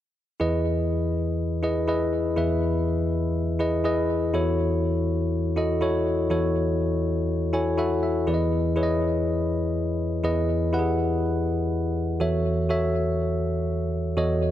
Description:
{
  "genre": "pop",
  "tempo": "122 BPM",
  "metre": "4/4",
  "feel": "straight",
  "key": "E major",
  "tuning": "A4 = 440 Hz",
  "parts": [
    { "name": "bell-like tine electric piano", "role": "solo", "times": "0.4-14.5 s", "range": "E2 to G#5", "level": "-22 LUFS", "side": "equal", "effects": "digital delay" }
  ],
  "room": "moderate plate reverb, RT60 2.7 s",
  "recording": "none",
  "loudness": "-22 LUFS",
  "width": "side -11 dB against mid",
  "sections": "0.4-8.3 A section; 8.3-14.5 B section",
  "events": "tine electric piano fill 7.3-8.3",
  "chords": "0.4 Emaj7; 4.3 F#m7/E; 8.3 Emaj7; 12.2 F#m7/E"
}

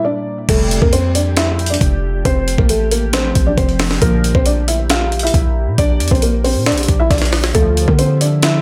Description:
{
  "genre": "hip hop, trap",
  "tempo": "136 BPM",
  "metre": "4/4",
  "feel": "half-time",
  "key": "F major",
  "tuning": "A4 = 440 Hz",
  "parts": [
    { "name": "felt-muted upright piano", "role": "melody", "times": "0.0-8.6 s", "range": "A3 to F5", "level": "-20 LUFS", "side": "equal", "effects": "delay" },
    { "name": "glassy FM pad", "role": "sustained chords", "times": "0.0-8.6 s", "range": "Bb2 to G4", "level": "-29 LUFS", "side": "equal", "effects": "ensemble chorus, built-in reverb" },
    { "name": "mellow synth brass", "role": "stabs", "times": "0.5-0.8, 4.0-4.3, 7.5-7.9 s", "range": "C2 to G3", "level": "-26 LUFS", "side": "equal", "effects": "chorus, delay" },
    { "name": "warm 808-style bass", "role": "bass", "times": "0.5-8.6 s", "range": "F1 to D3", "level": "-20 LUFS", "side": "equal", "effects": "none" },
    { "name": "breakbeat sampler-style drum kit", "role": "drums", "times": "0.5-8.5 s", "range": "crash cymbal, hi-hat, kick drum, snare drum", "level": "-18 LUFS", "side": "equal", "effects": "none" }
  ],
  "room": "little or no reverb",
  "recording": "none",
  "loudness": "-15 LUFS",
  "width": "mono",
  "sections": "0.5-8.6 A section",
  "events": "break 0.0-0.5; drum fill 7.1-7.5",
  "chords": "0.5 Fadd9; 4.0 Bb; 7.5 Dmadd9"
}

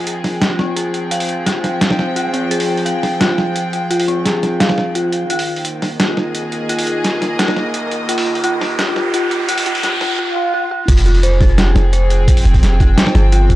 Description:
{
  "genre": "half-time drum and bass",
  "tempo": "172 BPM",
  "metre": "4/4",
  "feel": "half-time",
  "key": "F minor",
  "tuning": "A4 = 439 Hz",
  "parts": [
    { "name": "warm studio string section", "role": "sustained chords", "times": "0.0-13.6 s", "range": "Eb3 to G5", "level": "-22 LUFS", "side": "equal", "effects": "sidechain pumping, low-pass filter" },
    { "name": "boom bap sampler-style drum kit", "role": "drums", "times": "0.1-13.6 s", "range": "crash cymbal, hi-hat, snare drum", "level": "-18 LUFS", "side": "right 1 dB", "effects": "none" },
    { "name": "dark detuned synth bell", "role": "arpeggios", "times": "0.4-13.6 s", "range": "C4 to F5", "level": "-20 LUFS", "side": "left 1 dB", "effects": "chorus, phaser, vintage 12-bit sampler grit, low-pass filter, analog delay" },
    { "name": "riser, swell and impact", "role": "sound effects", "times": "7.0-12.3 s", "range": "none", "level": "-23 LUFS", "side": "right 2 dB", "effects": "none" },
    { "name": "long sustained 808-style bass", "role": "bass", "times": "10.9-13.6 s", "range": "F1 to G1", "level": "-12 LUFS", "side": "equal", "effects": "none" },
    { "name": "electronic kick drum", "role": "drums", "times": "10.9-13.6 s", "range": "none", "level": "-13 LUFS", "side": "equal", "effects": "none" }
  ],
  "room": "light reverb, digital ambience",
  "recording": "dry, gritty hardware recording, cassette tape, high-pass filter",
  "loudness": "-13 LUFS",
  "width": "side -16 dB against mid",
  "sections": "0.0-10.9 A section; 10.9-13.6 B section",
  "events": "build-up 0.0-10.9; riser 7.0-10.2; swell 10.2-10.9; drop 10.9-13.6; impact 10.9-12.3",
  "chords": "0.0 Fmadd9; 5.3 Ebsus4; 10.9 Fmadd9"
}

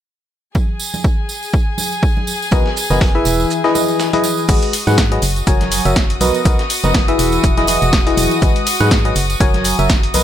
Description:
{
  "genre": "piano house",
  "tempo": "122 BPM",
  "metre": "4/4",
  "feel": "swing 56% on 16ths",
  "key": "unclear",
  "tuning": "A4 = 440 Hz",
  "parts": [
    { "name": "congas and tambourine", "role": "percussion", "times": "0.5-10.2 s", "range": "none", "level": "-24 LUFS", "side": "right 4 dB", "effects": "none" },
    { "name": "warm studio violin section", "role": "sustained chords", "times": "0.6-10.2 s", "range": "F#4 to D#6", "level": "-23 LUFS", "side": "left 1 dB", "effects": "sidechain pumping" },
    { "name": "electronic kick drum", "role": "drums", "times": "0.6-10.0 s", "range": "none", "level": "-15 LUFS", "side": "equal", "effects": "overdrive" },
    { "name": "barking FM electric piano", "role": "riff", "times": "2.5-10.2 s", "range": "E3 to G#5", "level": "-17 LUFS", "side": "left 2 dB", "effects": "chorus, sidechain pumping, ping-pong delay" },
    { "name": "organ-like FM bass", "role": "bass", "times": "2.5-10.2 s", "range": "E1 to G#2", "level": "-19 LUFS", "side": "equal", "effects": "sidechain pumping" },
    { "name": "dusty soul sampler-style drum kit", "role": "drums", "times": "2.5-10.2 s", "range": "hi-hat, shaker, snare drum", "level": "-27 LUFS", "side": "right 2 dB", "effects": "overdrive, high-pass filter on perc, high-pass filter on snare, high-pass filter on hats, high-pass filter on room" },
    { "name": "punchy analog drum machine", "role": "drums", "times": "4.5-10.2 s", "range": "crash cymbal, hi-hat, snare drum", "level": "-21 LUFS", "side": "left 1 dB", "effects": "overdrive" }
  ],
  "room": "little or no reverb",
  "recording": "none",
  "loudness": "-13 LUFS",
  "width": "side -10 dB against mid",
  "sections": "0.6-4.5 A section; 4.5-10.2 B section",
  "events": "kick drops out 3.5-4.5",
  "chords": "0.6 N.C.; 2.3 Bmaj7; 3.3 Emaj7; 4.5 G#m7; 5.2 F#7; 6.2 Bmaj7; 7.2 Emaj7; 8.4 G#m7; 9.2 F#7"
}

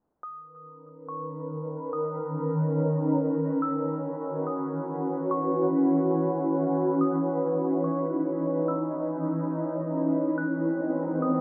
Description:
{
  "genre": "hip hop",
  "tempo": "142 BPM",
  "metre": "4/4",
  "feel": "half-time",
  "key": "B major",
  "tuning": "A4 = 438 Hz",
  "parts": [
    { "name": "delicate synth tine bell", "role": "melody", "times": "0.2-11.4 s", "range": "C#6 to F#6", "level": "-40 LUFS", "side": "equal", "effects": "chorus, phaser, tape echo" },
    { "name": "shimmering ambient pad", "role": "sustained chords", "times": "1.1-11.4 s", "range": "D#3 to B4", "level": "-28 LUFS", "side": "equal", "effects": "chorus, built-in reverb, phaser" },
    { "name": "swell", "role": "sound effects", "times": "10.7-11.4 s", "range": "none", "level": "-32 LUFS", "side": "equal", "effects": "none" }
  ],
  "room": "light reverb",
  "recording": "rough home demo mix, low-pass filter",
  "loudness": "-28 LUFS",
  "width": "mono",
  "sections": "0.2-11.4 A section",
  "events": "filter sweep 0.2-11.4; swell 10.7-11.4",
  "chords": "0.2 Bmaj9; 3.6 F#7sus4; 7.0 C#m9; 10.4 G#m9"
}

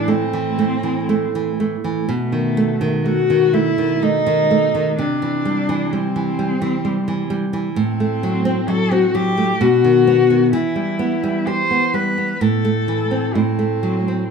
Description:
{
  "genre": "romantic duo for cello and classical guitar",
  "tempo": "64 BPM",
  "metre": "3/4",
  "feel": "rubato",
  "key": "unclear",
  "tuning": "A4 = 440 Hz",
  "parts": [
    { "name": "rich cello", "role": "melody", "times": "0.0-14.3 s", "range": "A3 to C5", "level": "-19 LUFS", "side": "left 4 dB", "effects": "none" },
    { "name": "nylon-string guitar", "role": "accompaniment", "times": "0.0-14.3 s", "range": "A2 to G4", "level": "-18 LUFS", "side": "right 2 dB", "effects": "none" }
  ],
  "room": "moderate large studio reverb, RT60 1.1 s",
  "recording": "band playing live in one room",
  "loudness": "-16 LUFS",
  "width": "side -5 dB against mid",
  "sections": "0.0-14.3 A section",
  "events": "none",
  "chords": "0.0 Am; 2.1 B7; 5.0 C; 7.8 F#dim/A; 9.6 B; 10.5 Em; 12.4 Am; 13.4 F#dim/A"
}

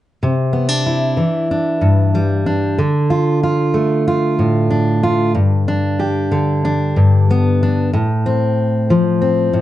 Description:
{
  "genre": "folk",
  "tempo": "93 BPM",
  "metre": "4/4",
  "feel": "straight",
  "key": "C major",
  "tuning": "A4 = 440 Hz",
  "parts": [
    { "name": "fingerpicked steel-string acoustic guitar", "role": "accompaniment", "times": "0.2-9.6 s", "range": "G2 to G4", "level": "-13 LUFS", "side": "equal", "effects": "none" }
  ],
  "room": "light reverb",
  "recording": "nothing above 10.6 kHz",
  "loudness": "-13 LUFS",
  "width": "side -13 dB against mid",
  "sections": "0.2-9.6 A section",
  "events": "none",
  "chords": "0.2 Cadd9; 2.8 Dm; 5.4 G; 7.9 F/A"
}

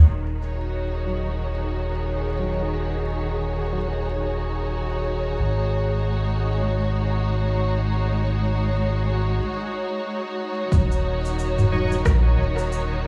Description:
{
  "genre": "ambient dub",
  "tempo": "90 BPM",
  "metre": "4/4",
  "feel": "swing 58% on 16ths",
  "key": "unclear",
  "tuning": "A4 = 440 Hz",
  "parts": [
    { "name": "rich studio string section", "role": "sustained chords", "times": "0.0-13.1 s", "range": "Eb3 to Db5", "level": "-30 LUFS", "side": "equal", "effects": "none" },
    { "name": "soft dub sub bass", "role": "bass", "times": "0.0-13.1 s", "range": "Eb1 to Bb1", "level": "-25 LUFS", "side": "equal", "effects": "tube saturation" },
    { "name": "wind-like tuned noise texture", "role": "texture", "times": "0.9-9.4 s", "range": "Ab4", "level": "-38 LUFS", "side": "equal", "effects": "built-in reverb" },
    { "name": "bright tonewheel organ", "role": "stabs", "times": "1.1-12.0 s", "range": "Gb3 to Db5", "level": "-37 LUFS", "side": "equal", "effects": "overdrive, chorus vibrato, slow rotary speaker, low-pass filter, dub echo" },
    { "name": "electronic kick drum", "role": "drums", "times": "10.7-12.2 s", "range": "none", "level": "-25 LUFS", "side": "equal", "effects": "overdrive" },
    { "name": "organic electronic drum kit", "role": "drums", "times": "10.7-12.9 s", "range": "cabasa, rim click, toms", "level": "-28 LUFS", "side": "equal", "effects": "dub echo" }
  ],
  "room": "light reverb, digital ambience",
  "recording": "echo-heavy mix, vinyl crackle, small room reverb",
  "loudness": "-24 LUFS",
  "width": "mono",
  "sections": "0.1-10.7 A section; 10.7-13.1 B section",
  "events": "break 9.4-10.7",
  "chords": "0.0 Ab7sus4; 10.7 Ebm7"
}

